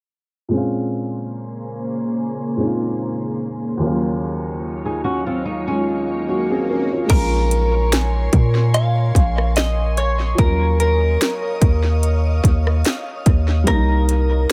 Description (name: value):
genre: contemporary R&B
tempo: 73 BPM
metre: 4/4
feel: swing 54% on 16ths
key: Bb minor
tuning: A4 = 441 Hz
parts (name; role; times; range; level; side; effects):
- felt-muted upright piano; accompaniment; 0.5-14.5 s; Eb2 to Db5; -26 LUFS; equal; none
- glassy FM pad; sustained chords; 1.2-14.5 s; Db3 to Eb6; -30 LUFS; equal; ensemble chorus, built-in reverb
- swell; sound effects; 5.9-7.1 s; none; -36 LUFS; equal; none
- flamenco guitar; arpeggios; 4.9-6.9 s; Ab3 to Ab4; -26 LUFS; equal; tape echo
- direct-recorded clean electric guitar; melody; 7.1-14.5 s; Bb4 to F5; -25 LUFS; equal; lush chorus, tape echo
- warm 808-style bass; bass; 7.1-14.5 s; Bb1 to Bb2; -20 LUFS; equal; none
- trap drum kit; drums; 7.1-14.5 s; crash cymbal, hi-hat, kick drum, rim click, snare drum; -20 LUFS; equal; tape echo
- buzzing kalimba; texture; 7.9-10.5 s; Ab5 to C6; -37 LUFS; equal; none
room: light reverb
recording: echo-heavy mix, low-pass filter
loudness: -19 LUFS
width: mono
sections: 0.5-7.1 A section; 7.1-14.5 B section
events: filter sweep 0.5-7.1; swell 5.9-7.1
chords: 0.5 Bbm9; 3.8 Ebm9; 7.1 Bbm9; 10.4 Ebm9; 13.7 Cm7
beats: | 0.52 1.34 2.17 2.99 | 3.81 4.63 5.45 6.27 | 7.10 7.92 8.74 9.56 | 10.38 11.21 12.03 12.85 | 13.67 14.49